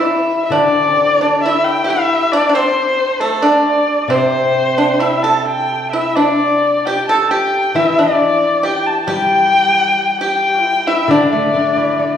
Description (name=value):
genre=chinese traditional, Chinese chamber ensemble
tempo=67 BPM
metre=2/4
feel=rubato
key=D shang mode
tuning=A4 = 440 Hz
part: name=dark erhu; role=melody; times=0.0-12.2 s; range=A4 to A5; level=-15 LUFS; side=left 2 dB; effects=none
part: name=pipa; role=second line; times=0.0-12.2 s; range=A3 to A4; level=-17 LUFS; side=right 1 dB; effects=none
part: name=steel-string zither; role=accompaniment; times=0.0-12.2 s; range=C3 to A4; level=-20 LUFS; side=left 2 dB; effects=none
room=wet recital hall reverb, RT60 1.8 s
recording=heard from further back in the room, studio reverb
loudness=-12 LUFS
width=side -9 dB against mid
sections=0.0-12.2 A section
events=none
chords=none